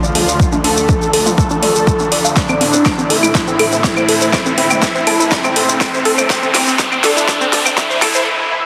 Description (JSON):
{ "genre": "melodic techno", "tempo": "122 BPM", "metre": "4/4", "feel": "straight", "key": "unclear", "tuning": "A4 = 440 Hz", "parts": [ { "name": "fat analog lead", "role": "melody", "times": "0.0-8.7 s", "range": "C4 to A4", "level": "-20 LUFS", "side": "equal", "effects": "ensemble chorus, sidechain pumping, digital delay" }, { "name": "dark chamber string section", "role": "sustained chords", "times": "0.0-8.2 s", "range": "D2 to E4", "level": "-25 LUFS", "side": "equal", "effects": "sidechain pumping" }, { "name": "tight sequenced synth", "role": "arpeggios", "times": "0.0-8.2 s", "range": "C4 to A5", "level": "-21 LUFS", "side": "equal", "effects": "chorus, phaser, sidechain pumping, digital delay" }, { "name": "swarming drone", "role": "drone", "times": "0.0-8.3 s", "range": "D3 to D4", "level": "-33 LUFS", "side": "equal", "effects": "none" }, { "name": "shekere", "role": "percussion", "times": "0.0-8.2 s", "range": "none", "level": "-24 LUFS", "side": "equal", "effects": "none" }, { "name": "riser", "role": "sound effects", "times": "0.0-8.3 s", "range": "none", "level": "-23 LUFS", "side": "equal", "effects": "none" }, { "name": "deep house drum kit", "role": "drums", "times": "0.2-8.1 s", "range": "claves, hi-hat, snare drum, toms", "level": "-19 LUFS", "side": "equal", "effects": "overdrive, sidechain pumping on toms, high-pass filter on toms, sidechain pumping on hats, high-pass filter on hats, high-pass filter on snare, sidechain pumping on perc, high-pass filter on perc" }, { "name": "electronic kick drum", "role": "drums", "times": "0.4-7.9 s", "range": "none", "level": "-20 LUFS", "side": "equal", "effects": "overdrive" } ], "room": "wet lush hall reverb, RT60 1.7 s", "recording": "dense, heavily limited modern master, high-pass filter", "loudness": "-14 LUFS", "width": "mono", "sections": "0.0-8.7 A section", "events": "build-up 0.0-8.7; riser 0.0-8.3; filter sweep on synth arpeggio sound 0.0-8.7; filter sweep 0.0-8.7; drum fill 2.4-8.3", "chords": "0.0 Dm; 2.4 Am" }